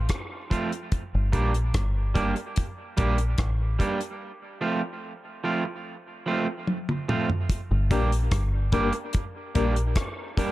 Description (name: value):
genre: dub reggae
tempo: 73 BPM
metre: 4/4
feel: straight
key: G minor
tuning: A4 = 440 Hz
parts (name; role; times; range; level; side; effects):
- deep dub fingered electric bass; bass; 0.0-9.9 s; G1 to Bb1; -24 LUFS; equal; none
- deep reggae drum kit; drums; 0.1-10.5 s; hi-hat, kick drum, rim click, toms; -27 LUFS; equal; none
- electric guitar at the edge of break-up; accompaniment; 0.5-10.5 s; F3 to G4; -29 LUFS; right 3 dB; dub echo
- reed electric piano; stabs; 7.9-10.5 s; Bb3 to Bb4; -31 LUFS; left 6 dB; fast tremolo, dub echo
room: light reverb, small room ambience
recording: echo-heavy mix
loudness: -24 LUFS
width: side -16 dB against mid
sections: 0.0-7.5 A section; 7.5-10.5 B section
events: break 0.0-7.5; drum fill 6.7-7.5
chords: 0.0 F; 0.9 Gm; 4.2 F; 7.5 Gm